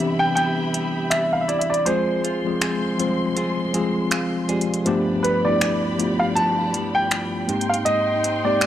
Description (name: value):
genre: contemporary R&B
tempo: 80 BPM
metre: 4/4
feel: swing 58% on 16ths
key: C major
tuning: A4 = 441 Hz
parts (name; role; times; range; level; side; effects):
- warm grand piano; melody; 0.0-8.7 s; B4 to A5; -22 LUFS; right 1 dB; none
- mellow tine electric piano; accompaniment; 0.0-8.7 s; E3 to Ab5; -23 LUFS; left 1 dB; medium stereo tremolo
- dark studio string section; sustained chords; 0.0-8.7 s; Ab3 to C6; -30 LUFS; left 1 dB; none
- direct-recorded clean electric guitar; arpeggios; 0.0-8.7 s; G2 to Ab4; -31 LUFS; right 3 dB; none
- smooth R&B drum kit; drums; 0.0-8.7 s; finger snaps, hi-hat; -25 LUFS; equal; none
room: little or no reverb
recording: dry, gritty hardware recording, transformer saturation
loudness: -19 LUFS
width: side -11 dB against mid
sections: 0.0-8.7 A section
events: break 0.0-8.7; tine electric piano fill 3.4-4.9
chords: 0.0 Cmaj7; 1.9 Fm; 4.9 G7; 7.5 Abmaj7